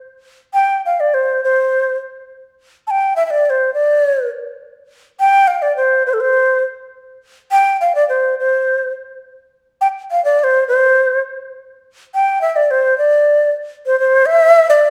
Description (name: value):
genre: andean folk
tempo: 104 BPM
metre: 2/4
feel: straight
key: unclear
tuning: A4 = 440 Hz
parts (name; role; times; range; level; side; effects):
- mellow large quena; solo; 0.5-14.9 s; A4 to A5; -14 LUFS; equal; slapback echo
room: moderate recital hall reverb, RT60 1.4 s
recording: none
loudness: -15 LUFS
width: mono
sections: 0.0-4.6 A section; 4.6-13.8 A section; 13.8-14.9 B section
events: none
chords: none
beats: 0.55 | 1.13 1.71 | 2.29 2.87 | 3.45 4.03 | 4.61 5.18 | 5.76 6.34 | 6.92 7.49 | 8.07 8.65 | 9.22 9.80 | 10.38 10.95 | 11.53 12.10 | 12.68 13.25 | 13.83 14.40